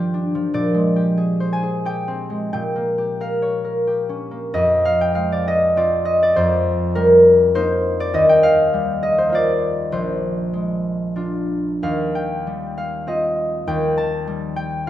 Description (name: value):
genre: classical, solo harp piece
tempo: 86-102 BPM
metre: 3/4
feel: rubato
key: F dorian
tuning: A4 = 441 Hz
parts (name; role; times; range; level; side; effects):
- concert harp; solo; 0.0-14.9 s; Bb1 to Bb5; -16 LUFS; equal; none
room: wet recital hall reverb, RT60 1.5 s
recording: none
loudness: -16 LUFS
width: side -12 dB against mid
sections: 0.0-4.5 A section; 4.5-14.9 B section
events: none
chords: 0.0 Gm7; 0.5 Bb13; 2.5 Bbm6; 4.5 Fm7; 6.4 Cm7/F; 8.1 Ebadd9; 9.9 Bb9; 11.8 Eb69